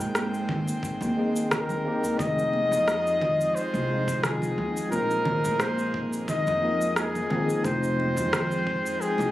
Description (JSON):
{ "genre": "sunset chillout", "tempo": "88 BPM", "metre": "4/4", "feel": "swing 54% on 16ths", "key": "F minor", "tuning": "A4 = 440 Hz", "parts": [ { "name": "tine electric piano", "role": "accompaniment", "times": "0.0-9.3 s", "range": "F3 to C5", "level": "-32 LUFS", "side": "equal", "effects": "fast stereo tremolo, auto-pan, digital delay" }, { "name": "airy breathy pad", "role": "sustained chords", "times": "0.0-9.3 s", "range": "F3 to G5", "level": "-33 LUFS", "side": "equal", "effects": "chorus" }, { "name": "upright bass", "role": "bass", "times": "0.0-9.3 s", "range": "F1 to Bb2", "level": "-32 LUFS", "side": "equal", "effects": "none" }, { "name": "electronic rim click, shaker and congas", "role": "drums", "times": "0.0-9.3 s", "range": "none", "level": "-30 LUFS", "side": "equal", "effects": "none" }, { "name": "congas", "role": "percussion", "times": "0.2-9.3 s", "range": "none", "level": "-38 LUFS", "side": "right 1 dB", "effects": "none" }, { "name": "electronic kick drum", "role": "drums", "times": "0.5-8.8 s", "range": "none", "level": "-36 LUFS", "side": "equal", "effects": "overdrive" }, { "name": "warm flugelhorn", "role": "melody", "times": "1.5-9.3 s", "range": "Ab4 to Eb5", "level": "-26 LUFS", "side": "left 1 dB", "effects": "tape echo" } ], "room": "light reverb, studio reverb", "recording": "recorded on a phone in the room, club ambience", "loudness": "-23 LUFS", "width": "side -14 dB against mid", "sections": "0.0-9.3 A section", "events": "none", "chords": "0.0 Abmaj9; 2.2 Fm9; 4.9 Bb9sus4; 7.7 Fm9" }